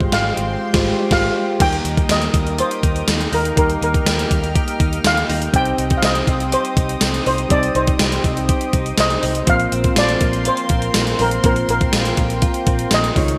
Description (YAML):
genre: 1980s-style pop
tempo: 122 BPM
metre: 4/4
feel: straight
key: Eb major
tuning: A4 = 440 Hz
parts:
  - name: steel pan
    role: melody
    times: 0.0-13.4 s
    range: Bb4 to G5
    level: -24 LUFS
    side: equal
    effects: delay
  - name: soft electric-piano-like synth keys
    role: accompaniment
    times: 0.0-13.4 s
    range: G3 to Db5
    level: -27 LUFS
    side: equal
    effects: chorus
  - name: chorused pulse-width pad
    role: sustained chords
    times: 0.0-13.4 s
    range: Ab3 to F6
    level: -29 LUFS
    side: equal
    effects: none
  - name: direct-recorded clean electric guitar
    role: riff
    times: 0.0-13.4 s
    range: Eb3 to G4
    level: -29 LUFS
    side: equal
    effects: analog chorus
  - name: vintage muted fingered electric bass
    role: bass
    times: 0.0-13.4 s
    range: Ab1 to Eb2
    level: -26 LUFS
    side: equal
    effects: none
  - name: gated 80s digital drum machine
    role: drums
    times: 0.0-13.4 s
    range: crash cymbal, hi-hat, kick drum, snare drum, tambourine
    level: -21 LUFS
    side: equal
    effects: gated reverb, gated reverb snare, overdrive
room: moderate lush hall reverb, RT60 2.1 s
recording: bright 1980s-style digital production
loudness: -17 LUFS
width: mono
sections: 0.0-1.6 A section; 1.6-13.4 B section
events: band accent 0.6-1.6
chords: 0.0 Fmadd9/Ab; 1.6 Eb; 5.5 Cm; 9.5 Bbsus2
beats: 0.13 0.62 1.11 | 1.60 2.10 2.59 3.08 | 3.57 4.06 4.55 5.05 | 5.54 6.03 6.52 7.01 | 7.51 8.00 8.49 8.98 | 9.47 9.96 10.46 10.95 | 11.44 11.93 12.42 12.92